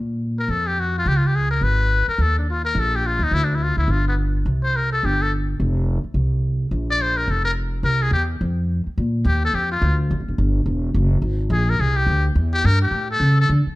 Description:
jazz, small-group swing and bop; 212 BPM; 4/4; swing 60% on 8ths; Bb major; A4 = 438 Hz
upright bass; bass; 0.0-13.7 s; E1 to D3; -19 LUFS; equal
trumpet with metal mute; melody; 0.4-13.5 s; B3 to D5; -22 LUFS; left 2 dB
light reverb; dark, warm production; -18 LUFS; side -19 dB against mid
0.0-9.0 A section; 9.0-13.8 B section
0.0 Bb5; 1.1 Db5; 2.2 Eb5; 3.3 Dmadd9; 3.9 G7(no3); 4.5 C5; 5.6 F5; 6.7 Bb5; 7.8 C7; 8.4 N.C.; 9.0 Bb; 10.1 N.C.; 11.2 Abmaj7; 12.4 Edim; 12.9 A

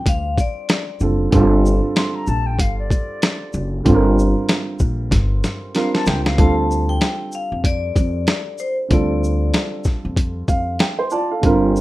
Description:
hip hop, jazz-hop; 95 BPM; 4/4; swing 59% on 16ths; A4 = 440 Hz
vibraphone with hard mallets; melody; 0.0-1.0, 6.4-9.8 s; C5 to A5; -25 LUFS; left 4 dB; plate reverb
dark upright piano; accompaniment; 0.0-11.8 s; D3 to A5; -21 LUFS; right 3 dB
upright bass; bass; 0.0-11.8 s; F#1 to F2; -19 LUFS; equal
boom bap sampler-style drum kit; drums; 0.1-11.8 s; hi-hat, kick drum, shaker, snare drum; -18 LUFS; equal
silver concert flute; second line; 2.0-6.5 s; D5 to C6; -27 LUFS; left 3 dB; plate reverb
moderate studio reverb, RT60 0.6 s; rough home demo mix; -16 LUFS; side -17 dB against mid
0.0-6.4 A section; 6.4-11.8 B section
drum fill 5.1-6.4; upright piano fill 10.2-11.4
0.0 Dm7; 1.3 Gm7; 6.4 Dm7

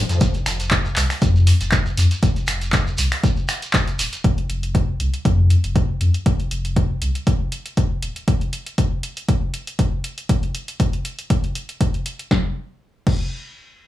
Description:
acid house; 119 BPM; 4/4; swing 54% on 16ths; A4 = 444 Hz
saturated sub bass; bass; 0.0-8.1 s; Eb1 to F2; -19 LUFS; left 1 dB; sidechain pumping
punchy analog drum machine; drums; 0.1-13.2 s; crash cymbal, finger snaps, handclaps, hi-hat, snare drum; -26 LUFS; equal
shekere; percussion; 0.1-4.2 s; -28 LUFS; right 2 dB
electronic kick drum; drums; 0.2-13.2 s; -19 LUFS; equal
little or no reverb; dry, gritty hardware recording, transformer saturation, studio ambience; -18 LUFS; side -14 dB against mid
0.0-12.3 A section; 12.3-13.9 B section

